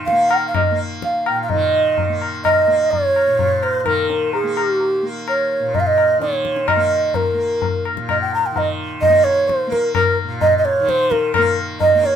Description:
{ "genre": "indian classical, Hindustani", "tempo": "128 BPM", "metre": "3/4", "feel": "straight", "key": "Bb raga bageshri", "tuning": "A4 = 438 Hz", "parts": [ { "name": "tanpura", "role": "drone", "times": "0.0-12.2 s", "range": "Bb2 to Bb3", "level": "-26 LUFS", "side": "right 1 dB", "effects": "none" }, { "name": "mellow bansuri", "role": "melody", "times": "0.1-12.2 s", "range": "G4 to Bb5", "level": "-16 LUFS", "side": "right 2 dB", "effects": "none" }, { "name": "tabla", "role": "percussion", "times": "0.1-12.2 s", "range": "none", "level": "-22 LUFS", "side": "left 6 dB", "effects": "none" } ], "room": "light reverb", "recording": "minimal, uncompressed stereo recording", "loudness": "-15 LUFS", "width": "side -8 dB against mid", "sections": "0.0-1.5 A section; 1.5-12.2 B section", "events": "none", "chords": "none", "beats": "| 0.07 0.55 1.02 | 1.49 1.97 2.44 | 2.92 3.39 3.86 | 4.33 4.80 5.27 | 5.74 6.21 6.68 | 7.15 7.62 8.09 | 8.55 9.02 9.48 | 9.95 10.41 10.88 | 11.34 11.81" }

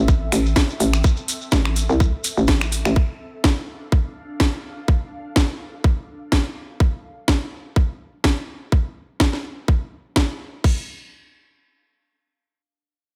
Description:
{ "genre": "bass house", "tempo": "125 BPM", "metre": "4/4", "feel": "swing 55% on 16ths", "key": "unclear", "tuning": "A4 = 441 Hz", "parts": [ { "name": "hollow knocking FM bass", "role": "bass", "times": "0.0-2.9 s", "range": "A1 to C2", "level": "-21 LUFS", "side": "equal", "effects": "overdrive, sidechain pumping" }, { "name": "ethereal airy pad", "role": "texture", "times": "0.0-6.8 s", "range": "C4 to F5", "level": "-40 LUFS", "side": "equal", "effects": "ensemble chorus, built-in reverb, phaser, sidechain pumping" }, { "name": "electronic kick drum", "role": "drums", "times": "0.1-10.7 s", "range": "none", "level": "-19 LUFS", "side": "equal", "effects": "overdrive, studio reverb" }, { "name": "shekere", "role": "percussion", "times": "0.1-2.9 s", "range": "none", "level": "-33 LUFS", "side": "equal", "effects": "none" }, { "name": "house drum kit", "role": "drums", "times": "0.3-10.7 s", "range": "crash cymbal, finger snaps, hi-hat, snare drum", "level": "-25 LUFS", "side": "equal", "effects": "studio reverb" } ], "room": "little or no reverb", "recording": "none", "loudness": "-21 LUFS", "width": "mono", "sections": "0.0-10.6 A section; 10.6-13.2 B section", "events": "fade-out on ambient pad 0.0-6.8", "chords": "0.0 Am; 3.0 Dm; 10.6 N.C.", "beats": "0.08 0.56 | 1.04 1.52 2.00 2.48 | 2.96 3.44 3.92 4.40 | 4.88 5.36 5.84 6.32 | 6.80 7.28 7.76 8.24 | 8.72 9.20 9.68 10.16 | 10.64" }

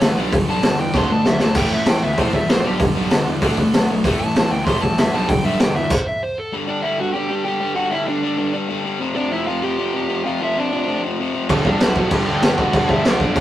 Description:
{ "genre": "punk rock", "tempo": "193 BPM", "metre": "4/4", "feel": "straight", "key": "unclear", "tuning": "A4 = 440 Hz", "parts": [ { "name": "dark smooth lead guitar", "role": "melody", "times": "0.0-13.4 s", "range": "D4 to C6", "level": "-23 LUFS", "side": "right 1 dB", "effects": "overdrive" }, { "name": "crunchy overdriven guitar", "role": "riff", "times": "0.0-5.9, 11.5-13.4 s", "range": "G2 to D4", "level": "-30 LUFS", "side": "right 5 dB", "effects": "none" }, { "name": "distorted electric guitar", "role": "riff", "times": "0.0-13.4 s", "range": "F2 to D4", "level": "-22 LUFS", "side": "left 2 dB", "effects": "distortion" }, { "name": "tight distorted guitar", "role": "riff", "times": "0.0-5.9, 11.5-13.4 s", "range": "G2 to D4", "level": "-27 LUFS", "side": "right 1 dB", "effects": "distortion" }, { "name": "fuzz picked electric bass", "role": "bass", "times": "0.0-5.9, 11.5-13.4 s", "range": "G1 to B2", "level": "-25 LUFS", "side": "right 1 dB", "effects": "overdrive" }, { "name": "raw garage drum kit", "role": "drums", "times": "0.0-6.0, 11.5-13.4 s", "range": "crash cymbal, hi-hat, kick drum, snare drum", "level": "-18 LUFS", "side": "equal", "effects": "none" } ], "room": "light reverb", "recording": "rough rehearsal-room recording, tube saturation", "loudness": "-16 LUFS", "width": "side -13 dB against mid", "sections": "0.0-6.5 A section; 6.5-13.4 B section", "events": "lead electric guitar solo 0.0-6.5; drum fill 1.0-1.6; stop 5.9-6.5", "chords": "0.2 G/B; 1.0 D5; 1.6 A5; 2.7 G/B; 3.4 D5; 4.0 A5; 5.1 G/B; 5.9 N.C.; 6.5 G5; 9.0 F5; 11.5 G", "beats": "0.03 | 0.34 0.65 0.95 1.26 | 1.57 1.88 2.19 2.50 | 2.81 3.12 3.43 3.74 | 4.05 4.36 4.67 4.98 | 5.29 5.60 5.91 6.22 | 6.53 6.84 7.15 7.46 | 7.77 8.08 8.39 8.71 | 9.02 9.33 9.64 9.95 | 10.26 10.57 10.88 11.19 | 11.50 11.81 12.12 12.43 | 12.74 13.06 13.37" }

